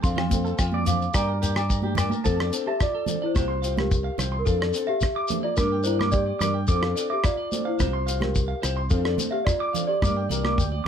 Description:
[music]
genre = highlife guitar band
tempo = 108 BPM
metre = 4/4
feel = straight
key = F major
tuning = A4 = 443 Hz
[part]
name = celesta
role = melody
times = 0.0-10.7 s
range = C4 to D6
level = -27 LUFS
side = left 1 dB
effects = plate reverb
[part]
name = fingerpicked swing-style acoustic guitar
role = accompaniment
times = 0.0-10.6 s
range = F3 to Bb4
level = -34 LUFS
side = left 7 dB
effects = none
[part]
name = clean electric guitar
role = arpeggios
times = 0.0-10.9 s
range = F4 to D6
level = -32 LUFS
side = right 3 dB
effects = spring reverb, slapback echo
[part]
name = fingered electric bass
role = bass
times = 0.0-10.9 s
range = C2 to G2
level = -27 LUFS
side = equal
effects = none
[part]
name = damped 70s drum kit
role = drums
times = 0.0-10.7 s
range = hi-hat, kick drum, rim click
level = -26 LUFS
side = equal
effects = none
[part]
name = shekere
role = percussion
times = 0.0-10.7 s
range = none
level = -30 LUFS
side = left 4 dB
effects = none
[part]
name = agogo bells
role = percussion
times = 0.2-2.1 s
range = none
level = -35 LUFS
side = left 8 dB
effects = none
[part]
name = congas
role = percussion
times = 0.2-10.9 s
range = none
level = -31 LUFS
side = right 6 dB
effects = none
[sound]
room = light reverb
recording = none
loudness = -22 LUFS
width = side -8 dB against mid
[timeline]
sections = 0.0-2.2 A section; 2.2-10.9 B section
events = none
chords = 0.0 F6; 1.1 Gm; 2.2 F6; 3.4 Csus4; 4.5 F6; 5.6 Gm; 6.7 F6; 7.8 Csus4; 8.9 F6; 10.0 Gm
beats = | 0.03 0.59 1.14 1.69 | 2.25 2.80 3.36 3.91 | 4.47 5.02 5.58 6.13 | 6.69 7.24 7.80 8.36 | 8.91 9.46 10.02 10.57

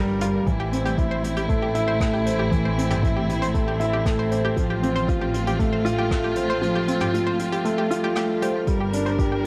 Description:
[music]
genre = piano and strings electronica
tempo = 117 BPM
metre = 4/4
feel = straight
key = unclear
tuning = A4 = 440 Hz
[part]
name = rich chamber string section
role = sustained chords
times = 0.0-9.5 s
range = G3 to Bb4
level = -32 LUFS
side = equal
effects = sidechain pumping
[part]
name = analog pluck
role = arpeggios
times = 0.0-9.4 s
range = F4 to C5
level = -33 LUFS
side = equal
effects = chorus, sidechain pumping, tape echo
[part]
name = dark concert grand piano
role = riff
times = 0.0-9.5 s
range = E3 to D5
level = -26 LUFS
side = equal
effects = tape echo
[part]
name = warm studio double bass section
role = bass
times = 0.0-9.5 s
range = G1 to A1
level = -30 LUFS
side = equal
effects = sidechain pumping
[part]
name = vintage brush drum kit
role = drums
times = 0.2-9.3 s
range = hi-hat, rim click, toms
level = -36 LUFS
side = equal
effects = none
[part]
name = electronic kick drum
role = drums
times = 0.5-9.3 s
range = none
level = -26 LUFS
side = equal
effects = none
[part]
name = swell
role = sound effects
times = 8.1-8.7 s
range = none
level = -41 LUFS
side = equal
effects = none
[sound]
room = moderate lush hall reverb, RT60 1.7 s, small room reverb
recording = none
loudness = -23 LUFS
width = mono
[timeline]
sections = 0.0-9.5 A section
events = none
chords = 0.5 Am; 4.6 F/A; 8.7 Gm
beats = | 0.47 0.98 1.49 2.01 | 2.52 3.03 3.54 4.06 | 4.57 5.08 5.60 6.11 | 6.62 7.13 7.65 8.16 | 8.67 9.19

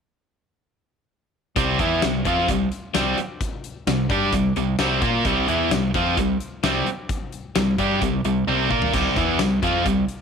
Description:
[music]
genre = classic rock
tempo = 130 BPM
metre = 4/4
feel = straight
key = C major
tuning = A4 = 439 Hz
[part]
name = biting overdriven guitar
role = riff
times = 1.6-10.0 s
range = C3 to Bb4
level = -24 LUFS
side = left 10 dB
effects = none
[part]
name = tight distorted guitar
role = riff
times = 1.6-10.0 s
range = C3 to Bb4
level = -23 LUFS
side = right 11 dB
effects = distortion
[part]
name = growling fingered electric bass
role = bass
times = 1.6-10.1 s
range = C2 to Bb2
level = -28 LUFS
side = right 1 dB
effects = overdrive
[part]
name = huge arena drum kit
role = drums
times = 1.6-10.2 s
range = crash cymbal, hi-hat, kick drum, snare drum, tambourine, toms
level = -27 LUFS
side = left 2 dB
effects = none
[sound]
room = moderate spring reverb, RT60 1.8 s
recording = 1960s-style stereo with parts hard left and right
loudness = -19 LUFS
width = side -6 dB against mid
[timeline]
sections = 1.6-10.2 A section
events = drum fill 8.5-8.9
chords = 1.6 C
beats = | 1.57 2.03 2.49 2.95 | 3.41 3.87 4.33 4.79 | 5.25 5.71 6.17 6.63 | 7.10 7.56 8.02 8.48 | 8.94 9.40 9.86

